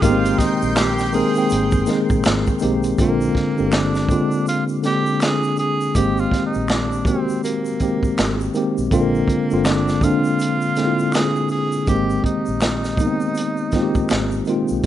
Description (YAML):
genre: R&B, neo-soul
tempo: 81 BPM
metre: 4/4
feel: swing 60% on 16ths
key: Ab lydian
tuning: A4 = 439 Hz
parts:
  - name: breathy tenor saxophone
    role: melody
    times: 0.0-14.9 s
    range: Bb3 to Ab4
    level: -25 LUFS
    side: right 2 dB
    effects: none
  - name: tine electric piano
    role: accompaniment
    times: 0.0-14.9 s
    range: D3 to G5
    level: -19 LUFS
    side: equal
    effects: overdrive, fast stereo tremolo
  - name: lush unison pad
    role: sustained chords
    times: 0.0-3.0 s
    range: Bb4 to C6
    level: -30 LUFS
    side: equal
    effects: chorus
  - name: vintage muted fingered electric bass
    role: bass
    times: 0.0-14.8 s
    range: G1 to Cb2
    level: -26 LUFS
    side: equal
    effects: none
  - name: crunchy breakbeat drum kit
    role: drums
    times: 0.0-14.9 s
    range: finger snaps, hi-hat, kick drum, snare drum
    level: -22 LUFS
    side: equal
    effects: none
  - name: egg shaker and finger snaps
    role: percussion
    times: 0.0-14.9 s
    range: none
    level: -34 LUFS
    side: left 2 dB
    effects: none
room: studio reverb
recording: rough home demo mix, nothing above 11.0 kHz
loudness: -17 LUFS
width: side -12 dB against mid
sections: 0.0-3.0 A section; 3.0-14.9 B section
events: none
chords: 0.0 Abmaj9; 3.0 Bb7; 6.0 Abmaj9; 8.9 Bb7; 11.9 Abmaj9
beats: | 0.02 0.77 1.51 2.25 | 2.99 3.73 4.47 5.21 | 5.95 6.69 7.43 8.17 | 8.91 9.65 10.39 11.14 | 11.88 12.62 13.36 14.10 | 14.84